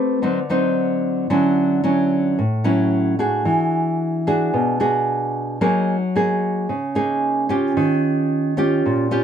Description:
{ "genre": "bossa nova", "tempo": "111 BPM", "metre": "4/4", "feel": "straight", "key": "unclear", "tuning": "A4 = 440 Hz", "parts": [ { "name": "nylon-string guitar", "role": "solo", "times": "0.0-9.2 s", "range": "A2 to B4", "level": "-17 LUFS", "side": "equal", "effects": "none" } ], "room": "moderate studio ambience, RT60 0.5 s", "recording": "minimal, uncompressed stereo recording", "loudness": "-17 LUFS", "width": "side -8 dB against mid", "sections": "0.0-1.3 A section; 1.3-9.2 B section", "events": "none", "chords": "0.2 D7b9; 1.3 Dmaj9; 3.5 E9; 5.6 F#69; 7.8 Eb9", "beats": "0.23 0.76 | 1.30 1.84 2.38 2.92 | 3.46 3.99 4.53 5.07 | 5.61 6.15 6.69 7.23 | 7.76 8.30 8.84" }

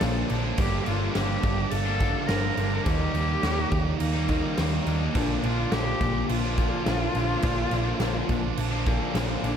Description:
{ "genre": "post-rock", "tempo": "105 BPM", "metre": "4/4", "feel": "straight", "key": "unclear", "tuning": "A4 = 439 Hz", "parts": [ { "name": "warm cello", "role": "melody", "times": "0.0-9.6 s", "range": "D4 to Bb4", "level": "-31 LUFS", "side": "equal", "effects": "analog delay" }, { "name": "twangy electric guitar", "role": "arpeggios", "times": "0.0-9.6 s", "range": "G2 to D4", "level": "-36 LUFS", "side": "left 5 dB", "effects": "analog delay" }, { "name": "cranked stack guitar", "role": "riff", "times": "0.0-9.6 s", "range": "G2 to Eb4", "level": "-33 LUFS", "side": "left 13 dB", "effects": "overdrive" }, { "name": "thick fuzz guitar", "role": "riff", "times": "0.0-9.6 s", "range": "G2 to Eb4", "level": "-31 LUFS", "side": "right 11 dB", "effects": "distortion" }, { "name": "hollow-body short-scale picked electric bass", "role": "bass", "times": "0.0-9.6 s", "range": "G1 to Eb2", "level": "-28 LUFS", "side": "equal", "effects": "none" }, { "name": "huge arena drum kit", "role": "drums", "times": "0.0-9.6 s", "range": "crash cymbal, kick drum, snare drum", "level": "-29 LUFS", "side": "equal", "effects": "none" } ], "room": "studio reverb", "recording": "none", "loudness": "-23 LUFS", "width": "side -8 dB against mid", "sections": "0.0-9.6 A section", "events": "none", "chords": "0.0 Bbmaj7; 0.6 Gm7; 2.9 Eb; 5.1 Bb", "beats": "0.01 | 0.58 1.15 1.72 2.29 | 2.87 3.44 4.01 4.58 | 5.15 5.72 6.29 6.86 | 7.43 8.00 8.57 9.15" }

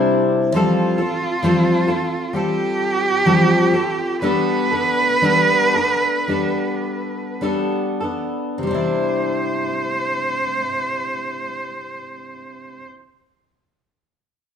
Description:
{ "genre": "acoustic folk duo or small band", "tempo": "47-68 BPM", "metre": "4/4", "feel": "straight", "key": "C major", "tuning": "A4 = 440 Hz", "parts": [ { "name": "fingerpicked twelve-string acoustic guitar", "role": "accompaniment", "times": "0.0-13.0 s", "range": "C3 to A4", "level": "-19 LUFS", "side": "left 2 dB", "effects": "none" }, { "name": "rich cello", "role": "melody", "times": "0.6-12.8 s", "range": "F4 to C5", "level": "-20 LUFS", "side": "right 3 dB", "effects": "none" } ], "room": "moderate large studio reverb, RT60 1.2 s", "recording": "band playing live in one room", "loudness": "-17 LUFS", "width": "side -8 dB against mid", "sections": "0.6-8.6 A section; 8.6-13.7 B section", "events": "slowing down 0.6-8.6", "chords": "0.0 Cadd9; 0.6 Fadd9; 4.2 Gadd9; 8.6 Cadd9", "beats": "| 0.55 1.44 2.33 3.26 | 4.22 5.22 6.28 7.41 | 8.63 9.89 11.16 12.42" }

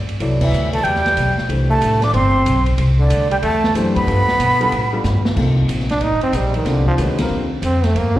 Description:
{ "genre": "modal jazz", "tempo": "186 BPM", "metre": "4/4", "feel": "swing 64% on 8ths", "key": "A dorian", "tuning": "A4 = 440 Hz", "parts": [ { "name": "upright bass", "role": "bass", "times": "0.0-8.2 s", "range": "Eb1 to B2", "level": "-18 LUFS", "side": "equal", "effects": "none" }, { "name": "open jazz drum kit", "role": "drums", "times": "0.1-8.2 s", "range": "crash cymbal, hi-hat, kick drum, ride cymbal, snare drum, toms", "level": "-25 LUFS", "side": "equal", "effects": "none" }, { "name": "warm upright piano", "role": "accompaniment", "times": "0.2-8.2 s", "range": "C3 to D5", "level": "-23 LUFS", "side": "left 2 dB", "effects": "slapback echo" }, { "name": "breathy concert flute", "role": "melody", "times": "0.4-5.0 s", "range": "D5 to D6", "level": "-19 LUFS", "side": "right 1 dB", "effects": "slapback echo" }, { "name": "bright trombone", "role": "second line", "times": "0.4-8.2 s", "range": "D3 to Eb4", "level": "-21 LUFS", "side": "right 2 dB", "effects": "slapback echo" } ], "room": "light reverb, studio ambience", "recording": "live gig heard through the venue's PA, recital hall reverb", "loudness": "-14 LUFS", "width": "side -14 dB against mid", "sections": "0.0-5.4 A section; 5.4-8.2 B section", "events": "band accent 0.4; drum fill 5.0-5.4; trombone solo 5.4-8.2", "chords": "0.0 Am11; 4.1 G7; 5.4 Cm11", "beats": "| 0.20 0.52 0.85 1.17 | 1.49 1.81 2.14 2.46 | 2.78 3.11 3.43 3.75 | 4.07 4.40 4.72 5.04 | 5.37 5.69 6.01 6.34 | 6.66 6.98 7.31 7.63 | 7.95" }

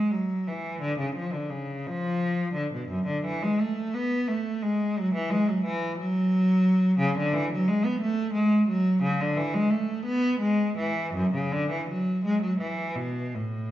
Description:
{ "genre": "classical, baroque-style suite movement for unaccompanied cello", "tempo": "52-60 BPM (dotted quarters)", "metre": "6/8", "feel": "rubato", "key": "F# minor, A major from 7.0 s", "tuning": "A4 = 441 Hz", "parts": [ { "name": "rich cello", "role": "solo", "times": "0.0-13.7 s", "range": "F#2 to B3", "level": "-24 LUFS", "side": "equal", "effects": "none" } ], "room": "wet recital hall reverb, RT60 1.5 s", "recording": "recorded in a church or concert hall, nothing above 7.6 kHz", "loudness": "-24 LUFS", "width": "side -13 dB against mid", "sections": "0.0-13.7 A section", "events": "none", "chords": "none", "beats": "| 0.81 1.85 | 2.89 3.94 | 4.97 6.00 | 7.01 8.03 | 9.03 10.06 | 11.15 12.23 | 13.34" }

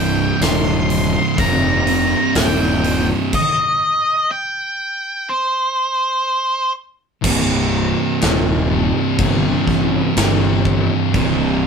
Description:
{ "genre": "stoner and doom metal", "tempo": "62 BPM", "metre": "4/4", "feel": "straight", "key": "C minor", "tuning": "A4 = 439 Hz", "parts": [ { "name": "octave-fuzz lead guitar", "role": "melody", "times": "0.0-6.7 s", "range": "C5 to C6", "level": "-18 LUFS", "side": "equal", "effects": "distortion" }, { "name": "thick fuzz guitar", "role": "riff", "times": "0.0-11.7 s", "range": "C2 to C3", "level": "-21 LUFS", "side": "left 6 dB", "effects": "distortion" }, { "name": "thick fuzz guitar", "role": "riff", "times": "0.0-11.7 s", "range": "C2 to C3", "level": "-20 LUFS", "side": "right 8 dB", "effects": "distortion" }, { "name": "fuzz fingered electric bass", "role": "bass", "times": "0.0-11.7 s", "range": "C1 to A1", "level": "-20 LUFS", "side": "left 1 dB", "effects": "overdrive" }, { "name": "big rock drum kit", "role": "drums", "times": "0.4-11.4 s", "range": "crash cymbal, hi-hat, kick drum, snare drum", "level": "-22 LUFS", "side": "left 1 dB", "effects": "none" } ], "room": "moderate studio reverb, RT60 0.5 s", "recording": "band playing live in one room", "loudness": "-15 LUFS", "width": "side -6 dB against mid", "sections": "0.0-7.2 A section; 7.2-11.7 B section", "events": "stop 3.3-7.2", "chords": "0.0 Cm", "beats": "0.41 1.39 2.36 | 3.34 4.31 5.29 6.26 | 7.24 8.21 9.19 10.16 | 11.14" }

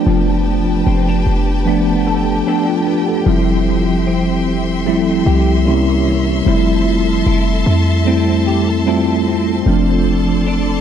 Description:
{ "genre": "R&B", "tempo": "75 BPM", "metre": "4/4", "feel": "swing 54% on 16ths", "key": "F major", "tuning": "A4 = 440 Hz", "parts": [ { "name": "mellow tine electric piano", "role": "accompaniment", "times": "0.0-10.8 s", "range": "F3 to A4", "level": "-15 LUFS", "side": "right 1 dB", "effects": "medium stereo tremolo" }, { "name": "warm studio string section", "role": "sustained chords", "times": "0.0-10.8 s", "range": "G4 to C6", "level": "-24 LUFS", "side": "left 3 dB", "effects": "none" }, { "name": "semi-hollow electric guitar", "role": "arpeggios", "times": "0.0-10.8 s", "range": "C3 to A4", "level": "-22 LUFS", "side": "left 1 dB", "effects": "ensemble chorus, analog delay" }, { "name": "warm 808-style bass", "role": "bass", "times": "0.1-10.8 s", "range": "F1 to F2", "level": "-17 LUFS", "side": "equal", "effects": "none" } ], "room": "light reverb", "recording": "dry, gritty hardware recording", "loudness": "-12 LUFS", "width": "side -9 dB against mid", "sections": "0.0-10.8 A section", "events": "none", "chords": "0.0 G9/F; 3.3 Fmaj9; 5.7 C7b9; 6.5 Fmaj7; 9.7 F6", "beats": "| 0.07 0.86 1.67 2.46 | 3.27 4.07 4.87 5.67 | 6.46 7.26 8.06 8.87 | 9.66 10.46" }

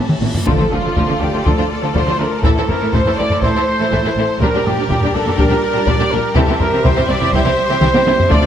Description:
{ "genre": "cinematic, epic orchestral film score", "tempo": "122 BPM", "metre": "4/4", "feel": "straight", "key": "D minor", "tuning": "A4 = 440 Hz", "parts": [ { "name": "rich symphonic violin section", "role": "melody", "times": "0.0-8.5 s", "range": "F4 to A5", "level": "-24 LUFS", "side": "left 4 dB", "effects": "none" }, { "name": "rich studio violin section", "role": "second line", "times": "0.0-8.5 s", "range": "A3 to A4", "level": "-24 LUFS", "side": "left 4 dB", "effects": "none" }, { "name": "rich symphonic viola section", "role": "accompaniment", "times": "0.0-8.5 s", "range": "E3 to D4", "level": "-22 LUFS", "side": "right 1 dB", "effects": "none" }, { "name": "clear symphonic double bass section", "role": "bass", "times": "0.0-8.4 s", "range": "A1 to D2", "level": "-23 LUFS", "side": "right 3 dB", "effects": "none" }, { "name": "rich symphonic cello section", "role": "bass", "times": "0.0-8.5 s", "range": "A2 to D3", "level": "-23 LUFS", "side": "right 3 dB", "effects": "none" }, { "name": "reverse cymbal and impact", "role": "sound effects", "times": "0.0-2.4 s", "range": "none", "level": "-28 LUFS", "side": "equal", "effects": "none" }, { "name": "taiko ensemble", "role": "drums", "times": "0.1-8.5 s", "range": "none", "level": "-18 LUFS", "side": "left 1 dB", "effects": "none" }, { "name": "mellow French horn section", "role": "sustained chords", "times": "0.5-8.5 s", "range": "E3 to F4", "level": "-28 LUFS", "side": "left 5 dB", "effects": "none" }, { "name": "rich symphonic string section", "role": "sustained chords", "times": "0.5-8.5 s", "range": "G3 to E5", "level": "-23 LUFS", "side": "equal", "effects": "none" }, { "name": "dark trumpet section", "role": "stabs", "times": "0.5-8.5 s", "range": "F4 to D5", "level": "-20 LUFS", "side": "right 2 dB", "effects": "none" } ], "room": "moderate concert hall reverb, RT60 2.3 s", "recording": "none", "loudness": "-13 LUFS", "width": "side -9 dB against mid", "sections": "0.5-8.5 A section", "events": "drum fill 0.0-0.5, 7.8-8.3; reverse cymbal 0.0-0.5; impact 0.5-2.4", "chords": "0.5 Dm; 2.4 Am; 4.4 Gm/Bb; 6.4 C", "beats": "| 0.47 0.97 1.46 1.95 | 2.44 2.93 3.42 3.92 | 4.41 4.90 5.38 5.87 | 6.36 6.85 7.33 7.82 | 8.31" }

